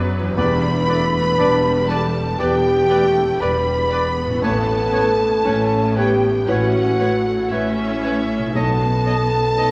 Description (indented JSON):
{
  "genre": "cinematic",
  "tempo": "59 BPM",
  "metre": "4/4",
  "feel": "rubato",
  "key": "E dorian",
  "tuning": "A4 = 441 Hz",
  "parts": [
    { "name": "clear symphonic violin section", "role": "melody", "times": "0.0-9.7 s", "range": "B4 to B5", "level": "-32 LUFS", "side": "equal", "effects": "none" },
    { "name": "hollow concert flute", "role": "second line", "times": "0.0-9.7 s", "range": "B4 to B5", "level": "-28 LUFS", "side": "equal", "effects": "none" },
    { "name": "felt-muted upright piano", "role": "accompaniment", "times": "0.0-9.7 s", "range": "A1 to B4", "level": "-30 LUFS", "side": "equal", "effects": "none" },
    { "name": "rich symphonic viola section", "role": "accompaniment", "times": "0.0-9.7 s", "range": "F#3 to C#4", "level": "-30 LUFS", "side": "equal", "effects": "none" },
    { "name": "mellow French horn section", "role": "sustained chords", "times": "0.0-9.7 s", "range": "B3 to B4", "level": "-23 LUFS", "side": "equal", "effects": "none" },
    { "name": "concert harp", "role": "arpeggios", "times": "0.0-9.7 s", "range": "E2 to B4", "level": "-31 LUFS", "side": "equal", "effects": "none" },
    { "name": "clear symphonic double bass section", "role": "bass", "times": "0.0-9.7 s", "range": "E1 to B1", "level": "-28 LUFS", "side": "equal", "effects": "none" },
    { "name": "rich symphonic cello section", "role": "bass", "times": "0.0-9.7 s", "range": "E2 to B2", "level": "-28 LUFS", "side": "equal", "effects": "none" },
    { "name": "clear oboe", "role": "second line", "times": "0.4-9.7 s", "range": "C#5 to D#5", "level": "-32 LUFS", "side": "equal", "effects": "none" },
    { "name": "mellow clarinet", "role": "second line", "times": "0.4-9.7 s", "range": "B4 to C#5", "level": "-32 LUFS", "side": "equal", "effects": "none" },
    { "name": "rich studio violin section", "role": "second line", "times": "0.4-9.7 s", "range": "B4 to D#5", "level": "-36 LUFS", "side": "equal", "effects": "none" },
    { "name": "timpani", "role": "percussion", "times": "0.4-1.9 s", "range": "E2", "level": "-33 LUFS", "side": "equal", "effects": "none" }
  ],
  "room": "wet scoring stage reverb, RT60 1.9 s",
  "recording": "worn, warbling old tape, cassette tape, warbly pitch drift",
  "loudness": "-18 LUFS",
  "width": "mono",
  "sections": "0.0-9.7 A section",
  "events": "none",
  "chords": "0.4 Em7; 4.4 Aadd9; 8.5 Badd9"
}